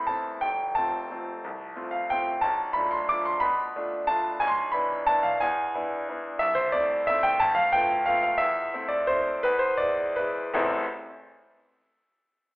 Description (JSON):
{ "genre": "classical, piano waltz", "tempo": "151-193 BPM", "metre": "3/4", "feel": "rubato", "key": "A minor", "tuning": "A4 = 440 Hz", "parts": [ { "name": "clear concert grand piano", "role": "solo", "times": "0.0-10.8 s", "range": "F1 to D6", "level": "-23 LUFS", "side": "equal", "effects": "none" } ], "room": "wet recital hall reverb, RT60 1.4 s", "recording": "recorded in a church or concert hall, telephone sound", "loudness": "-23 LUFS", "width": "side -22 dB against mid", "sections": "0.0-10.6 A section; 10.6-11.7 B section", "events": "none", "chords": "0.4 F; 2.4 Bm7b5; 4.4 E7/B; 6.4 Am/C; 7.4 Bm7b5/D; 8.4 Am/E; 9.5 E7; 10.6 Am" }